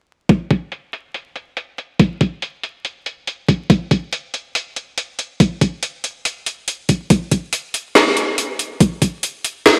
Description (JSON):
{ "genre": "deep dubstep", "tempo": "141 BPM", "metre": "4/4", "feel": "swing 60% on 16ths, half-time", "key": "none", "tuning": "none", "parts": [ { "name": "electronic kick drum", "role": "drums", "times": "0.3-9.1 s", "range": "none", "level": "-15 LUFS", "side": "equal", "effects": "overdrive, high-pass filter on kick, studio ambience" }, { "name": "garage drum kit", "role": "drums", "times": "0.3-9.8 s", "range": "hi-hat, snare drum", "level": "-18 LUFS", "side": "equal", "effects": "overdrive, low-pass filter on hats, studio ambience, low-pass filter on snare" } ], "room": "moderate lush hall reverb, RT60 1.9 s", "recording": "dreamy mix soaked in reverb, vinyl crackle", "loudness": "-19 LUFS", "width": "mono", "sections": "0.3-9.8 A section", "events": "filter sweep on drum 0.3-9.8", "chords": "none" }